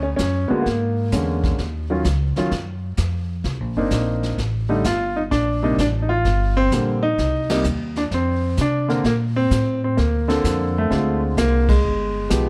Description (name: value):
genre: jazz piano trio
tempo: 129 BPM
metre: 4/4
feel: swing 68% on 8ths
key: Bb major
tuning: A4 = 439 Hz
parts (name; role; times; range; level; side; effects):
- clear baby grand piano; melody; 0.0-12.5 s; C3 to Bb4; -23 LUFS; equal; none
- upright bass; bass; 0.0-12.5 s; G1 to C3; -24 LUFS; equal; none
- vintage brush drum kit; drums; 0.2-12.5 s; brushed snare drum, hi-hat, kick drum, ride cymbal, snare drum; -29 LUFS; equal; none
room: light reverb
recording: dark, warm production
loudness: -21 LUFS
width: mono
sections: 0.0-12.5 A section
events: band accent 7.4, 11.6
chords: 0.0 Bb7alt; 1.6 Ebm9; 3.4 Cm9; 4.4 Fadd9; 5.3 Bb; 6.2 Gm; 7.2 Cm; 8.1 F5; 9.0 Bbmaj9; 10.9 Dm7b5; 11.8 G7b9